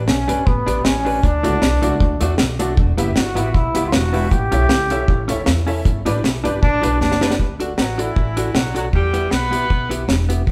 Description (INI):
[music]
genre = ska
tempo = 156 BPM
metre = 4/4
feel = swing 54% on 8ths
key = D major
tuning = A4 = 440 Hz
[part]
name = hollow-body jazz guitar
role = accompaniment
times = 0.0-10.4 s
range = A3 to B4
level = -28 LUFS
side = equal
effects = dub echo
[part]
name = upright bass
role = bass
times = 0.0-10.5 s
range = E1 to E2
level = -24 LUFS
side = equal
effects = none
[part]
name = bright trombone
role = melody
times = 0.1-7.4 s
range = B3 to G4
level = -23 LUFS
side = equal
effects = none
[part]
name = deep reggae drum kit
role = drums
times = 0.1-10.5 s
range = hi-hat, kick drum, snare drum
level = -22 LUFS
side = equal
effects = none
[part]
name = honky-tonk upright piano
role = stabs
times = 1.4-7.3 s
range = D4 to E5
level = -28 LUFS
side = equal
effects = none
[part]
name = mellow horn section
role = melody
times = 7.8-10.1 s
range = E3 to B4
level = -25 LUFS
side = equal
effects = none
[sound]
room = wet large studio reverb, RT60 1.1 s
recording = band playing live in one room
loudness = -18 LUFS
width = mono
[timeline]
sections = 0.0-7.4 A section; 7.4-10.5 B section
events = trombone solo 0.0-7.4; drum fill 7.0-7.4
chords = 0.0 G; 1.2 D; 2.8 Em; 4.3 A; 5.9 G; 7.4 D; 8.9 Em